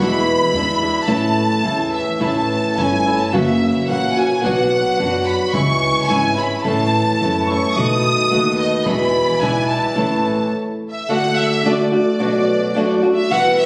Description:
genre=mexican folk, mariachi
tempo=108 BPM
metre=2/4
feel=rubato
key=A major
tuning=A4 = 440 Hz
part: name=clear studio violin section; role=melody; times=0.0-13.7 s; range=D5 to D#6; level=-22 LUFS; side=equal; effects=none
part: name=flamenco guitar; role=accompaniment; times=0.0-13.7 s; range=E2 to F#4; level=-20 LUFS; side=equal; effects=none
part: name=upright bass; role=bass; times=0.0-10.3 s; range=F#1 to F#2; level=-26 LUFS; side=equal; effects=none
part: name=warm studio violin section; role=sustained chords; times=2.2-10.5 s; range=C#4 to A5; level=-33 LUFS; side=equal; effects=none
room=moderate recital hall reverb, RT60 1.4 s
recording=recorded on a phone in the room, club reverb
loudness=-17 LUFS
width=mono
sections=0.0-2.2 A section; 2.2-11.1 A section; 11.1-13.7 B section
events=stop 10.5-11.1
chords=0.0 E7; 1.1 A; 3.3 F#7; 4.4 Bm; 5.5 C#m; 6.6 A; 7.8 B7; 8.9 E7; 10.0 A; 11.1 D; 12.2 Bm7

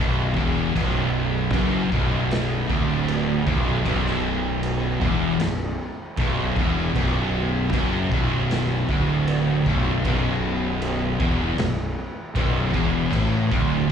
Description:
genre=stoner and doom metal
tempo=78 BPM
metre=4/4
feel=straight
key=B minor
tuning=A4 = 440 Hz
part: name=biting overdriven guitar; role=riff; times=0.0-13.9 s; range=B1 to A2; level=-26 LUFS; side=equal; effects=none
part: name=thick fuzz guitar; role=riff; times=0.0-13.9 s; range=B1 to A2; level=-27 LUFS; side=left 8 dB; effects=distortion
part: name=thick fuzz guitar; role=riff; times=0.0-13.9 s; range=B1 to A2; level=-27 LUFS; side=right 9 dB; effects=distortion
part: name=fuzz fingered electric bass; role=bass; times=0.0-13.9 s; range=B0 to A1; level=-27 LUFS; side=equal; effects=overdrive
part: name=raw garage drum kit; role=drums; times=0.4-13.7 s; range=crash cymbal, kick drum, snare drum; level=-27 LUFS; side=equal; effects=none
room=light reverb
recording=live gig heard through the venue's PA, club reverb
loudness=-20 LUFS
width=side -8 dB against mid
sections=0.0-13.9 A section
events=none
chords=0.0 Bm

